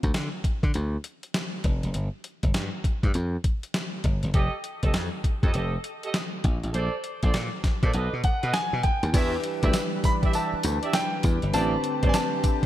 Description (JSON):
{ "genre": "R&B, new jack swing", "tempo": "100 BPM", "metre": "4/4", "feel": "swing 64% on 16ths", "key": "unclear", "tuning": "A4 = 440 Hz", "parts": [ { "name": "slap bass", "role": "bass", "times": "0.0-12.1 s", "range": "F1 to D3", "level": "-27 LUFS", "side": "equal", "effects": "tube saturation" }, { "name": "boom bap sampler-style drum kit", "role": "drums", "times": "0.0-12.7 s", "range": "crash cymbal, hi-hat, kick drum, snare drum, tambourine", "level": "-25 LUFS", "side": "equal", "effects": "gated reverb" }, { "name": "mellow horn section", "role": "stabs", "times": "4.3-12.7 s", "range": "G4 to E5", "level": "-32 LUFS", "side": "right 3 dB", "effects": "ping-pong delay" }, { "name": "clear grand piano", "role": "melody", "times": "8.2-12.7 s", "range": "F#5 to B5", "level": "-29 LUFS", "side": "equal", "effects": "ping-pong delay" }, { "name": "tine electric piano", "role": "accompaniment", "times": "9.1-12.7 s", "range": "C4 to B4", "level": "-32 LUFS", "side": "equal", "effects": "medium stereo tremolo" }, { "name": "chorused pulse-width pad", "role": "sustained chords", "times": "9.1-12.7 s", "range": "D3 to B4", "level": "-33 LUFS", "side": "equal", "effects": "none" } ], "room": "light reverb, digital ambience", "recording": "bright 1980s-style digital production", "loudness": "-23 LUFS", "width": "side -13 dB against mid", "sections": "0.0-9.1 A section; 9.1-12.7 B section", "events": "none", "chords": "0.0 Dm; 1.9 Fsus2/G; 4.3 F9; 6.4 Bbmaj9; 7.9 B7; 9.1 Em7; 11.5 Am11", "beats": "0.14 0.74 1.34 | 1.94 2.54 3.14 3.74 | 4.34 4.94 5.54 6.14 | 6.74 7.34 7.94 8.54 | 9.14 9.74 10.34 10.94 | 11.54 12.14" }